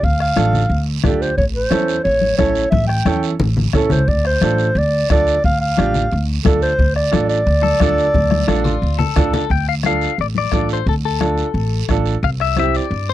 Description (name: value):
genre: latin, cumbia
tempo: 177 BPM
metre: 4/4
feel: straight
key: D minor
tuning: A4 = 440 Hz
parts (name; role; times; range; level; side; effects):
- dark clarinet; melody; 0.0-9.1 s; A4 to G5; -18 LUFS; equal; none
- upright bass; bass; 0.0-13.1 s; A1 to G2; -19 LUFS; equal; none
- bombo; percussion; 0.0-12.7 s; none; -21 LUFS; left 1 dB; none
- guiro; percussion; 0.0-13.1 s; none; -32 LUFS; right 18 dB; none
- bright upright piano; accompaniment; 0.4-12.8 s; C4 to A4; -22 LUFS; right 7 dB; none
- congas; percussion; 0.4-12.7 s; none; -21 LUFS; left 4 dB; none
- clean electric guitar; second line; 7.6-13.1 s; D4 to G5; -22 LUFS; left 13 dB; none
room: light reverb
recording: dry, close 1970s-style studio recording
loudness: -14 LUFS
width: side -14 dB against mid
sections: 0.0-9.5 A section; 9.5-13.1 B section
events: drum fill 2.7-4.1, 8.1-9.5; clean electric guitar solo 9.5-13.1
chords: 0.0 Dm; 1.4 A; 4.1 Dm; 12.2 C